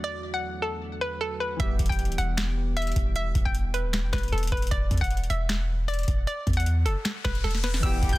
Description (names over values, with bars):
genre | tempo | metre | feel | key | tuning
hip hop, trap | 154 BPM | 4/4 | half-time | unclear | A4 = 439 Hz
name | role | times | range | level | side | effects
hollow square pluck | melody | 0.0-8.2 s | A4 to G6 | -31 LUFS | equal | chorus, digital delay
glassy digital keys | accompaniment | 0.0-4.7, 7.8-8.2 s | E2 to G4 | -36 LUFS | right 1 dB | chorus
long sustained 808-style bass | bass | 1.6-8.2 s | D1 to E2 | -26 LUFS | equal | none
booming analog drum machine | drums | 1.6-8.2 s | crash cymbal, finger snaps, hi-hat, kick drum, snare drum | -27 LUFS | equal | none
riser | sound effects | 6.8-7.8 s | none | -38 LUFS | left 5 dB | none
breathy mellow large pan pipes | second line | 7.8-8.2 s | G5 | -34 LUFS | left 3 dB | none
muted studio string section | sustained chords | 7.8-8.2 s | E3 to G4 | -36 LUFS | equal | none
room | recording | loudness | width
little or no reverb | dense, heavily limited modern master | -24 LUFS | side -18 dB against mid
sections
0.0-7.8 A section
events
riser 6.8-7.8; drum fill 7.4-7.8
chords
0.0 D/E; 1.6 Em; 4.7 D/E